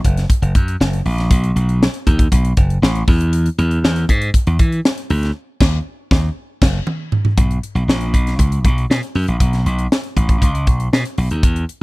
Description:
polished 1980s jazz-funk pop; 119 BPM; 4/4; straight; A4 = 439 Hz
slap bass; bass; 0.0-11.6 s; F#1 to E3; -16 LUFS; equal
crisp fusion drum kit; drums; 0.0-11.8 s; crash cymbal, hi-hat, kick drum, snare drum, toms; -16 LUFS; equal
little or no reverb; dry, close 1970s-style studio recording; -14 LUFS; side -22 dB against mid
0.0-7.4 A section; 7.4-11.8 B section
band accent 5.4-7.4; drum fill 6.4-7.4
0.30 0.80 | 1.31 1.81 2.32 2.83 | 3.33 3.84 4.34 4.85 | 5.35 5.86 6.37 6.87 | 7.38 7.88 8.39 8.90 | 9.41 9.91 10.42 10.93 | 11.44

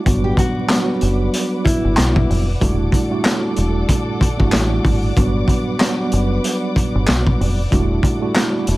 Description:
hip hop, boom-bap hip-hop; 94 BPM; 4/4; swing 58% on 16ths; G major; A4 = 440 Hz
dark studio string section; sustained chords; 0.0-8.8 s; E4 to D6; -28 LUFS; left 2 dB; high-pass filter, low-pass filter
mellow tine electric piano; accompaniment; 0.1-8.8 s; F#3 to F#4; -21 LUFS; right 2 dB; fast stereo tremolo, high-pass filter, low-pass filter
deep dub fingered electric bass; bass; 0.1-8.8 s; E1 to B1; -18 LUFS; equal
raw garage drum kit; drums; 0.1-8.8 s; handclaps, hi-hat, kick drum, snare drum; -18 LUFS; equal
nylon-string guitar; melody; 0.2-2.1 s; E4 to G4; -25 LUFS; left 1 dB; high-pass filter, low-pass filter, ping-pong delay
light reverb; vinyl crackle; -15 LUFS; side -19 dB against mid
0.1-8.8 A section
0.1 Gmaj7; 2.6 Em11; 5.2 Gmaj7; 7.7 Em11
| 0.06 0.70 1.34 1.97 | 2.61 3.25 3.89 4.53 | 5.17 5.80 6.44 7.08 | 7.72 8.36

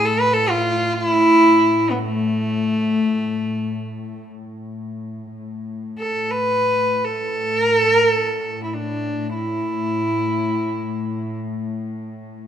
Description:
caucasian folk, Caucasian lament; free time; A4 = 440 Hz
rich cello; melody; 0.0-11.3 s; A3 to B4; -18 LUFS; equal
dark chamber string section; drone; 0.0-12.5 s; A2; -27 LUFS; left 2 dB
wet recital hall reverb, RT60 1.6 s; minimal, uncompressed stereo recording; -17 LUFS; side -9 dB against mid
0.0-5.4 A section; 5.4-12.5 A section
free time

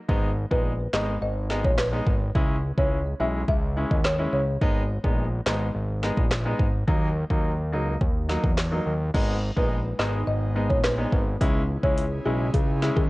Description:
dancehall; 106 BPM; 4/4; straight; G# minor; A4 = 438 Hz
clear baby grand piano; accompaniment; 0.1-13.0 s; F#3 to E4; -30 LUFS; equal
fat analog bass; bass; 0.1-13.1 s; G#1 to E2; -27 LUFS; equal
afro-pop drum kit; drums; 0.1-13.1 s; crash cymbal, handclaps, hi-hat, kick drum, rim click, snare drum; -25 LUFS; equal; overdrive, vintage 12-bit sampler grit
folk marimba with soft mallets; melody; 0.5-4.4, 9.6-13.1 s; G#4 to E5; -30 LUFS; equal; digital delay
airy breathy pad; sustained chords; 9.1-13.1 s; C#3 to G#4; -34 LUFS; equal; chorus, sidechain pumping
little or no reverb; worn, warbling old tape, cassette tape, warbly pitch drift; -22 LUFS; side -21 dB against mid
0.0-9.1 A section; 9.1-13.1 B section
0.1 G#m; 2.4 C#m; 4.6 G#m; 6.9 D#m; 9.1 G#m; 11.4 C#m
| 0.09 0.65 1.22 1.78 | 2.35 2.92 3.48 4.05 | 4.62 5.18 5.75 6.31 | 6.88 7.45 8.01 8.58 | 9.14 9.71 10.28 10.84 | 11.41 11.97 12.54

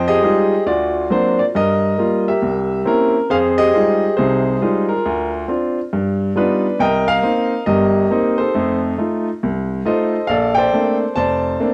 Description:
solo jazz; 137 BPM; 4/4; swing 65% on 8ths; A4 = 439 Hz
clear baby grand piano; solo; 0.0-11.7 s; F1 to A5; -17 LUFS; equal
light reverb; worn, warbling old tape, cassette tape, warbly pitch drift; -17 LUFS; mono
0.0-3.3 A section; 3.3-11.7 A section
0.0 Fm9; 0.7 D7alt; 1.5 Ebadd9/G; 2.4 C7b9; 3.3 Fm9; 5.0 Dm7; 5.9 G7b13; 6.8 Cm7; 8.5 F7; 10.3 Bbmaj9
0.22 0.66 1.10 | 1.53 1.97 2.41 2.85 | 3.29 3.73 4.16 4.60 | 5.04 5.48 5.91 6.35 | 6.79 7.23 7.66 8.10 | 8.54 8.97 9.41 9.85 | 10.28 10.72 11.15 11.59

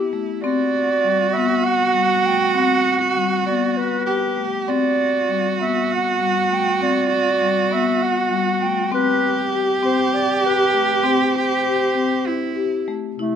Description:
contemporary instrumental, chamber music in an uneven meter; 198 BPM (eighths); 7/8; straight; C lydian; A4 = 437 Hz
dark clarinet; melody; 0.0-13.4 s; A3 to G5; -22 LUFS; right 2 dB
dark cello; second line; 0.0-13.4 s; C3 to G4; -21 LUFS; right 5 dB
marimba with medium mallets; arpeggios; 0.0-13.4 s; G3 to G4; -22 LUFS; left 6 dB
moderate recital hall reverb, RT60 1.8 s; close, detailed microphones; -17 LUFS; side -8 dB against mid
0.0-13.2 A section
0.0 Cmaj7sus2
0.12 | 0.42 0.72 1.02 1.32 1.63 1.93 2.23 | 2.54 2.84 3.14 3.45 3.75 4.06 4.37 | 4.67 4.98 5.29 5.59 5.90 6.21 6.51 | 6.81 7.11 7.41 7.72 8.02 8.32 8.62 | 8.92 9.22 9.52 9.82 10.13 10.43 10.73 | 11.04 11.34 11.65 11.95 12.26 12.57 12.88 | 13.18

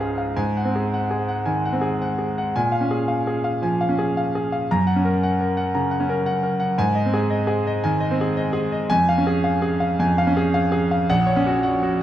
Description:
classical, romantic character piece for solo piano; 106-118 BPM; 4/4; rubato; A4 = 441 Hz
bright grand piano; solo; 0.0-12.0 s; Bb1 to Bb5; -19 LUFS; equal
moderate recital hall reverb, RT60 1.7 s; dark, warm production; -19 LUFS; side -12 dB against mid
0.0-12.0 A section
0.4 Ab7; 2.6 Bbm7; 4.7 Gb; 6.8 Ab; 8.9 Db/F; 11.1 Gb/Bb
| 0.38 0.94 1.47 2.03 | 2.56 3.10 3.63 4.18 | 4.72 5.23 5.74 6.26 | 6.78 7.31 7.84 8.36 | 8.89 9.43 9.98 10.54 | 11.09 11.64

